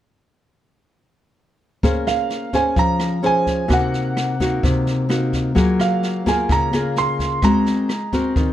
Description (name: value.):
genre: bossa nova.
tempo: 129 BPM.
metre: 4/4.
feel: straight.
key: Bb minor.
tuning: A4 = 440 Hz.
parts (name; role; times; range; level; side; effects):
nylon-string guitar; accompaniment; 1.8-8.5 s; C3 to C5; -19 LUFS; left 1 dB; none.
jazz brush drum kit; drums; 1.8-8.5 s; kick drum, rim click, snare drum; -23 LUFS; equal; none.
clear concert grand piano; melody; 2.1-8.3 s; F5 to C6; -22 LUFS; right 3 dB; none.
room: little or no reverb.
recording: dark, warm production.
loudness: -17 LUFS.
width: side -12 dB against mid.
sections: 1.8-8.5 A section.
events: none.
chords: 1.8 Bbm9; 3.7 Cm7b5; 5.6 Gbmaj9; 7.4 Ab9.